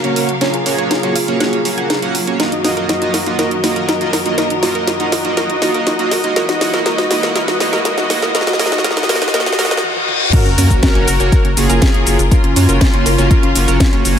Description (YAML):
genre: progressive house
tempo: 121 BPM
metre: 4/4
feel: straight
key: F# major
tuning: A4 = 438 Hz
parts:
  - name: soft supersaw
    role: melody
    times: 0.0-14.2 s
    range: C#4 to D#5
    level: -19 LUFS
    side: equal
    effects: sidechain pumping, low-pass filter, ping-pong delay
  - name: warm studio string section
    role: sustained chords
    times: 0.0-14.2 s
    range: F#2 to E#5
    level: -24 LUFS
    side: left 2 dB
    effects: sidechain pumping
  - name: analog pluck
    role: arpeggios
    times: 0.0-14.2 s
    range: C#4 to G#5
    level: -24 LUFS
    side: equal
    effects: chorus, sidechain pumping, ping-pong delay
  - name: chorused polysynth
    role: stabs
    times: 0.0-14.2 s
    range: A#3 to F#5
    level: -20 LUFS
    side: right 4 dB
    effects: sidechain pumping, ping-pong delay
  - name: house drum kit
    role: drums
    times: 0.0-14.2 s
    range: crash cymbal, hi-hat, shaker, snare drum, toms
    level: -18 LUFS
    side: equal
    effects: overdrive
  - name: riser, reverse cymbal and sub drop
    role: sound effects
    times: 2.8-12.3 s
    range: none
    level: -25 LUFS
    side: left 1 dB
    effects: none
  - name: clear symphonic violin section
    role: second line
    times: 10.3-14.2 s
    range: E#4 to A#4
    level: -24 LUFS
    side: left 1 dB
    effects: sidechain pumping, ping-pong delay
  - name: electronic kick drum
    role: drums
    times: 10.3-13.9 s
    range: none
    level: -12 LUFS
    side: equal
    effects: none
  - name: round analog bass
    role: bass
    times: 10.5-14.2 s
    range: F#1 to F#2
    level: -15 LUFS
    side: left 1 dB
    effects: sidechain pumping
room: light reverb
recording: high-pass filter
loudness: -12 LUFS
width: side -8 dB against mid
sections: 0.0-10.3 A section; 10.3-14.2 B section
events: build-up 0.0-10.3; drum fill 0.0-9.8, 9.8-10.3; filter sweep on supersaw synth 0.0-10.3; reverse cymbal 9.3-10.3; drop 10.3-14.2; impact 10.3-12.3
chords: 0.0 F#; 2.4 D#madd9/F#; 6.4 Eadd9; 10.3 F#